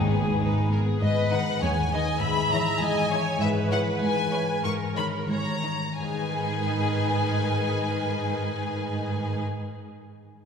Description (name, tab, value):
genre	cinematic, playful, whimsical film cue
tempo	84-101 BPM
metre	2/4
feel	straight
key	G# minor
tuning	A4 = 440 Hz
part	rich studio violin section	melody	0.0-9.4 s	A#4 to C#6	-29 LUFS	left 2 dB	none
part	clear studio violin section	second line	0.0-9.4 s	D#4 to C#5	-34 LUFS	left 4 dB	none
part	small flute group	second line	0.0-0.7 s	G#5	-36 LUFS	left 3 dB	none
part	rich studio viola section	accompaniment	0.0-9.4 s	D#3 to E5	-32 LUFS	equal	none
part	concert harp	arpeggios	0.0-9.9 s	G#2 to D#5	-30 LUFS	left 4 dB	none
part	rich studio double bass section	bass	0.0-0.8 s	G#1	-30 LUFS	right 2 dB	none
part	warm studio cello section	bass	0.0-9.4 s	D#2 to G#2	-29 LUFS	right 3 dB	none
room	wet concert hall reverb, RT60 2.5 s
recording	recorded in a church or concert hall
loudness	-23 LUFS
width	side -6 dB against mid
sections	0.0-1.0 A section; 1.0-6.0 B section; 6.0-8.8 C section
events	slowing down 2.8-6.0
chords	0.0 G#m; 2.2 C#m/G#; 4.6 D#7/G#; 6.0 G#m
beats	0.40 | 1.01 1.62 | 2.22 2.81 | 3.40 4.01 | 4.63 5.29 | 6.00 6.71 | 7.42 8.12